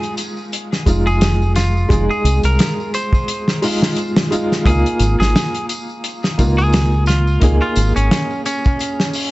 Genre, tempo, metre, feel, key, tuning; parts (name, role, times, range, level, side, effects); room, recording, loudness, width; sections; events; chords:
trip hop; 87 BPM; 4/4; swing 56% on 16ths; F minor; A4 = 441 Hz
semi-hollow electric guitar; melody; 0.0-9.3 s; Db4 to C5; -23 LUFS; right 1 dB; vintage 12-bit sampler grit, tape echo
warm upright piano; accompaniment; 0.0-9.3 s; Ab3 to Ab4; -21 LUFS; equal; tremolo, vintage 12-bit sampler grit, tape echo
warm soul drum kit; drums; 0.0-9.3 s; hi-hat, kick drum, snare drum; -18 LUFS; equal
tambourine; percussion; 0.0-9.3 s; -34 LUFS; equal
deep dub fingered electric bass; bass; 0.9-8.1 s; F1 to Db2; -15 LUFS; equal
little or no reverb; vinyl crackle, nothing above 8.0 kHz; -14 LUFS; side -19 dB against mid
0.0-9.3 A section
0.0 Fm7; 4.7 Db69